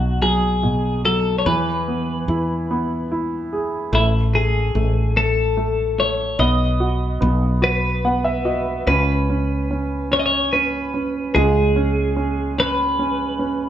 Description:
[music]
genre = six-eight pop ballad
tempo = 49 BPM (dotted quarters)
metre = 6/8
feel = straight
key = unclear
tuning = A4 = 441 Hz
[part]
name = twelve-string electric guitar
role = melody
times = 0.0-13.7 s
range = E4 to D#5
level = -21 LUFS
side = left 2 dB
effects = spring reverb
[part]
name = clear concert grand piano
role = accompaniment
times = 0.0-13.7 s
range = B2 to F#5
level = -22 LUFS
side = right 2 dB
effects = none
[part]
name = woody fretless electric bass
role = bass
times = 0.0-13.7 s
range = A1 to E2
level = -22 LUFS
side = equal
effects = none
[sound]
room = moderate large studio reverb, RT60 0.8 s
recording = band playing live in one room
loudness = -17 LUFS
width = side -11 dB against mid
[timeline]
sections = 0.0-8.9 A section; 8.9-13.7 B section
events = grand piano fill 7.6-8.9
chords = 0.0 B5; 1.5 E; 3.9 Amaj7(no3); 6.4 B; 8.9 C#5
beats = 0.21 | 1.46 2.70 | 3.93 5.16 | 6.39 7.63 | 8.87 10.12 | 11.35 12.58

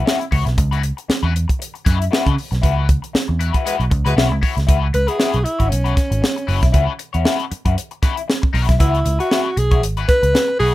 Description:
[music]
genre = funk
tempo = 117 BPM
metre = 4/4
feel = swing 56% on 16ths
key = C# minor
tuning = A4 = 441 Hz
[part]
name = breathy alto saxophone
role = melody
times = 0.0, 4.9-10.7 s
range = C#4 to B4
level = -20 LUFS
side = equal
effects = none
[part]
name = electric guitar at the edge of break-up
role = accompaniment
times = 0.0-10.7 s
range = E4 to C#5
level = -23 LUFS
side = left 7 dB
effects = wah
[part]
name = vintage muted picked electric bass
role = bass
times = 0.0-10.7 s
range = F#1 to C#3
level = -18 LUFS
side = equal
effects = none
[part]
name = crisp fusion drum kit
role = drums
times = 0.1-10.7 s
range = hi-hat, kick drum, snare drum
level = -18 LUFS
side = equal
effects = none
[part]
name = warm horn section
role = second line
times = 3.7-4.1 s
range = G#3 to B4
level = -25 LUFS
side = right 1 dB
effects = slapback echo
[sound]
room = little or no reverb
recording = rough home demo mix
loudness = -15 LUFS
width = side -16 dB against mid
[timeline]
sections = 0.0-4.7 A section; 4.7-10.7 B section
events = band accent 2.6-4.7; alto saxophone solo 4.7-10.7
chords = 0.0 C#m7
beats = 0.06 | 0.58 1.09 1.60 2.12 | 2.63 3.15 3.66 4.17 | 4.69 5.20 5.71 6.23 | 6.74 7.26 7.77 8.29 | 8.80 9.31 9.83 10.34

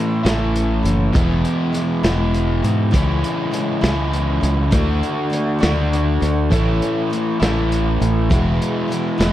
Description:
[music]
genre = folk rock and heartland rock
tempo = 67 BPM (dotted quarters)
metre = 6/8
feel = straight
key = E mixolydian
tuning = A4 = 445 Hz
[part]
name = picked twelve-string acoustic guitar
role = accompaniment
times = 0.0-9.3 s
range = E2 to F#4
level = -24 LUFS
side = left 4 dB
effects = none
[part]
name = crunchy overdriven guitar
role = riff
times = 0.0-9.3 s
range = E2 to F#4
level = -21 LUFS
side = right 1 dB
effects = spring reverb
[part]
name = fingered electric bass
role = bass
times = 0.2-9.3 s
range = E1 to G#2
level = -19 LUFS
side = equal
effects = none
[part]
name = vintage drum kit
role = drums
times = 0.3-9.3 s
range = hi-hat, kick drum, snare drum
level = -21 LUFS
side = equal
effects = none
[part]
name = reed electric piano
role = accompaniment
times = 6.5-9.3 s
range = G#4 to E5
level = -31 LUFS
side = right 6 dB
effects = fast tremolo
[sound]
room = light reverb, small room reverb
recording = dark, warm production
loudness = -16 LUFS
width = side -13 dB against mid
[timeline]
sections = 0.0-9.3 A section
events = none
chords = 0.0 A; 1.2 E; 2.9 C#m; 4.7 D; 6.5 A; 8.3 E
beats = 0.26 | 1.15 2.05 | 2.94 3.83 | 4.73 5.62 | 6.52 7.41 | 8.31 9.20

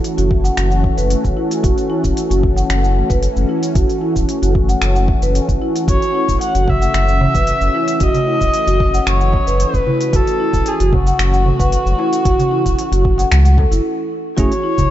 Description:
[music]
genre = organic downtempo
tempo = 113 BPM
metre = 4/4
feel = straight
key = F# minor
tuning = A4 = 440 Hz
[part]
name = warm analog pad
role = sustained chords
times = 0.0-14.9 s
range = E3 to A4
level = -24 LUFS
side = left 1 dB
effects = chorus, sidechain pumping
[part]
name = organic electronic drum kit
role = drums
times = 0.0-14.9 s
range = finger snaps, hi-hat, shaker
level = -26 LUFS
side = equal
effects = none
[part]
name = marimba with soft mallets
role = arpeggios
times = 0.2-14.8 s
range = E4 to F#5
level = -20 LUFS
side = right 1 dB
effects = digital delay
[part]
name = warm sub bass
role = bass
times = 0.2-14.9 s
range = E1 to C#2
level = -16 LUFS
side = equal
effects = sidechain pumping
[part]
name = electronic kick drum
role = drums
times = 0.3-14.9 s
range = none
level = -19 LUFS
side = equal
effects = none
[part]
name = dark kamancheh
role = melody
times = 5.9-14.9 s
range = F#4 to F#5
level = -19 LUFS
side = left 1 dB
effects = ping-pong delay
[part]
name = darbuka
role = percussion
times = 6.0-14.9 s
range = none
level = -23 LUFS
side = right 2 dB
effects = none
[part]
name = bell-like tine electric piano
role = accompaniment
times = 14.4-14.5 s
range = A3 to G#4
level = -21 LUFS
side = right 2 dB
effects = sidechain pumping
[sound]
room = light reverb, digital ambience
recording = dark, warm production, nothing above 7.8 kHz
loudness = -13 LUFS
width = side -12 dB against mid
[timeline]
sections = 0.0-14.4 A section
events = stop 13.8-14.4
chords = 0.0 F#m7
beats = 0.04 0.57 1.10 | 1.64 2.17 2.70 3.23 | 3.76 4.29 4.82 5.35 | 5.88 6.41 6.94 7.47 | 8.01 8.54 9.07 9.60 | 10.13 10.66 11.19 11.72 | 12.25 12.79 13.32 13.85 | 14.38

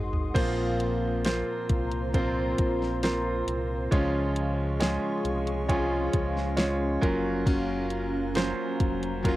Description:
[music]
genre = pop ballad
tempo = 68 BPM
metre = 4/4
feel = straight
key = unclear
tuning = A4 = 440 Hz
[part]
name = clear concert grand piano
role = accompaniment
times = 0.0-9.4 s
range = Bb2 to Db5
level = -29 LUFS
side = right 2 dB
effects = cassette tape
[part]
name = glassy FM pad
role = sustained chords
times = 0.0-9.4 s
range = Gb3 to Eb6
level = -36 LUFS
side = left 1 dB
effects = ensemble chorus, built-in reverb, phaser, cassette tape
[part]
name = fingerpicked plugged-in steel-string acoustic guitar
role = arpeggios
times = 0.0-9.4 s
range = Bb2 to Gb4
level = -32 LUFS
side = left 3 dB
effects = cassette tape, tape echo
[part]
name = round analog bass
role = bass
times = 0.0-9.4 s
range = F1 to Db2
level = -33 LUFS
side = equal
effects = none
[part]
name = smooth R&B drum kit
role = drums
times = 0.1-9.4 s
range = crash cymbal, hi-hat, kick drum, snare drum, toms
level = -28 LUFS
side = equal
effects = none
[sound]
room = light reverb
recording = home recording on cassette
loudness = -25 LUFS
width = side -16 dB against mid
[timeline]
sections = 0.4-9.4 A section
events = drum fill 0.0-0.4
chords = 0.4 Bbsus2; 3.9 Db; 7.0 Gbmaj7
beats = | 0.35 1.25 2.14 3.03 | 3.92 4.81 5.69 6.58 | 7.47 8.36 9.25

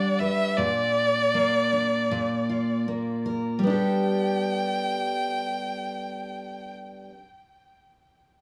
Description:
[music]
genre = pop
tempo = 79 BPM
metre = 4/4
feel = swing 60% on 16ths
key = unclear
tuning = A4 = 438 Hz
[part]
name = rich violin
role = melody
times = 0.0-6.8 s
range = D5 to G5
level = -28 LUFS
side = equal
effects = digital delay
[part]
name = picked steel-string acoustic guitar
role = accompaniment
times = 0.0-7.2 s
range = Bb2 to B4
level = -29 LUFS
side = equal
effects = none
[sound]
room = wet studio ambience, RT60 0.5 s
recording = none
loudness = -25 LUFS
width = mono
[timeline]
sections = 0.0-3.6 A section; 3.6-6.7 B section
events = none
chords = 0.0 Gadd9; 0.6 Bb; 3.6 Gadd9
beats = | 0.58 1.34 2.10 2.86 | 3.62 4.39 5.15 5.91

